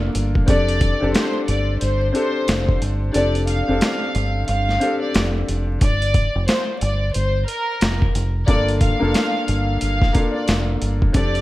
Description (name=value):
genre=hip hop, boom-bap hip-hop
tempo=90 BPM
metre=4/4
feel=swing 60% on 16ths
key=G minor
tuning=A4 = 441 Hz
part: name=warm upright piano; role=accompaniment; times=0.0-11.4 s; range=Bb3 to A4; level=-23 LUFS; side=left 2 dB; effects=cassette tape, high-pass filter, low-pass filter
part: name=deep dub fingered electric bass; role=bass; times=0.0-11.4 s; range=F1 to G1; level=-21 LUFS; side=equal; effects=none
part: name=boom bap sampler-style drum kit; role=drums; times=0.1-11.4 s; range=hi-hat, kick drum, snare drum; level=-20 LUFS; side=equal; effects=none
part: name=warm studio violin section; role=melody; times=0.5-11.4 s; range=Bb4 to F5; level=-24 LUFS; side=equal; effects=high-pass filter, low-pass filter, tape echo
room=light reverb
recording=vinyl crackle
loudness=-17 LUFS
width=side -16 dB against mid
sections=0.0-11.4 A section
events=kick muted 3.1-5.8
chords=0.5 F69; 5.8 Gm7